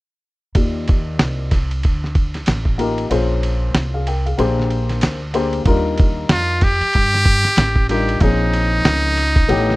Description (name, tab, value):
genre	hip hop, jazz-hop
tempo	94 BPM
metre	4/4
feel	swing 60% on 16ths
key	Eb major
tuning	A4 = 442 Hz
part	dark upright piano	accompaniment	0.5-9.8 s	E3 to G5	-21 LUFS	left 3 dB	low-pass filter
part	lo-fi sampler-style drum kit	drums	0.5-9.8 s	hi-hat, kick drum, ride cymbal, snare drum	-19 LUFS	equal	vintage 12-bit sampler grit
part	upright bass	bass	0.6-9.8 s	A1 to G2	-21 LUFS	equal	none
part	trumpet with metal mute	melody	6.3-9.8 s	Eb4 to G4	-18 LUFS	equal	none
room	little or no reverb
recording	none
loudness	-15 LUFS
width	side -20 dB against mid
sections	0.6-5.7 A section; 5.7-9.8 B section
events	filter sweep on upright piano 0.6-5.7; kick muted 3.1-5.7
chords	0.6 Ebmaj9; 3.1 Bbm9; 4.4 Bb13; 5.7 Ebmaj9; 8.2 Bbm9